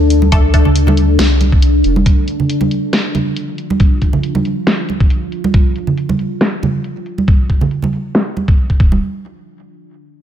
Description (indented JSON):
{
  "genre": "deep dubstep",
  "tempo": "138 BPM",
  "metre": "4/4",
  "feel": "swing 53% on 16ths, half-time",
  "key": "D minor",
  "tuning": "A4 = 442 Hz",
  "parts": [
    { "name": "deep dark ambient pad", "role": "sustained chords", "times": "0.0-8.8 s", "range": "D4 to A4", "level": "-19 LUFS", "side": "left 2 dB", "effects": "chorus, built-in reverb" },
    { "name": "soft dub sub bass", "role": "bass", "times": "0.0-2.0, 8.8-9.0 s", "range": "D1 to D2", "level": "-12 LUFS", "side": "equal", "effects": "none" },
    { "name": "dubstep drum kit", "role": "drums", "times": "0.1-8.7 s", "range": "hi-hat, snare drum", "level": "-17 LUFS", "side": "equal", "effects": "low-pass filter on hats, studio reverb, low-pass filter on snare" },
    { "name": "congas", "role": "percussion", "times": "0.2-9.0 s", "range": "none", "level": "-18 LUFS", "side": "right 4 dB", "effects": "none" },
    { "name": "filtered dub chord stab", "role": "stabs", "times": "0.3-0.6 s", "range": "A3 to A4", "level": "-22 LUFS", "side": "equal", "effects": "phaser, dub echo" },
    { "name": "electronic kick drum", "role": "drums", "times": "0.3-8.9 s", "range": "none", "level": "-12 LUFS", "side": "equal", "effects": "studio reverb" }
  ],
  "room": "digital ambience",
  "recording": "none",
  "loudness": "-12 LUFS",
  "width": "side -10 dB against mid",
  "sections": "0.0-9.0 A section; 9.0-10.2 B section",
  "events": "filter sweep on drum 0.0-9.0; filter sweep on ambient pad 0.0-9.0",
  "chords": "0.0 D5; 8.8 N.C."
}